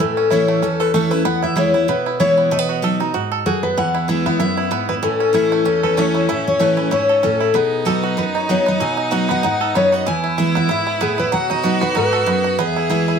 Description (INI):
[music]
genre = bluegrass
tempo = 190 BPM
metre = 4/4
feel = swing 55% on 8ths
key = E major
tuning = A4 = 444 Hz
[part]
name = picked steel-string acoustic guitar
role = melody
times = 0.0-13.2 s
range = G#4 to G#5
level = -18 LUFS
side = left 3 dB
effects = none
[part]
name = picked steel-string acoustic guitar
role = accompaniment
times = 0.0-13.2 s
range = E2 to F#4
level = -21 LUFS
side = right 1 dB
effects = none
[part]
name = bluegrass banjo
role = arpeggios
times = 0.0-13.2 s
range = E3 to A4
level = -22 LUFS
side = right 8 dB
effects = none
[part]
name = clear fiddle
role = second line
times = 3.8-13.2 s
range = B3 to G#4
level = -24 LUFS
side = left 1 dB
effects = none
[sound]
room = moderate studio reverb, RT60 0.8 s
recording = none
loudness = -15 LUFS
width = side -6 dB against mid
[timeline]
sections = 0.0-13.2 A section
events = none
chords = 0.0 A; 1.3 E; 2.5 B; 3.8 E; 5.0 A; 7.5 B; 10.1 E; 11.3 B; 12.6 E